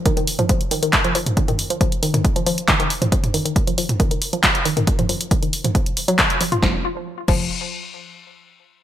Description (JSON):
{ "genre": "driving peak-time techno", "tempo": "137 BPM", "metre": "4/4", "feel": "straight", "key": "unclear", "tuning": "A4 = 440 Hz", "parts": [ { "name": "woody wave-folded pluck", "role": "riff", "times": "0.1-7.5 s", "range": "Eb3 to F4", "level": "-23 LUFS", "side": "equal", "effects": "chorus, vintage 12-bit sampler grit, sidechain pumping, digital delay" }, { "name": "electronic kick drum", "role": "drums", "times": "0.1-7.4 s", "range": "none", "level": "-20 LUFS", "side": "equal", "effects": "none" }, { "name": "punchy analog drum machine", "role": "drums", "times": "0.1-7.4 s", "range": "crash cymbal, handclaps, hi-hat, snare drum, toms", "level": "-20 LUFS", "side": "equal", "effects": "gated reverb" }, { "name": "tight sequencer bass", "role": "bass", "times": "6.6-7.5 s", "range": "F1", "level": "-28 LUFS", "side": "equal", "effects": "none" } ], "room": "light reverb", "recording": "bright 1980s-style digital production", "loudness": "-17 LUFS", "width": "side -11 dB against mid", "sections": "0.0-6.6 A section; 6.6-8.4 B section", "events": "filter sweep on synth arpeggio sound 0.0-6.6", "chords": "0.0 Ebsus2; 6.6 N.C." }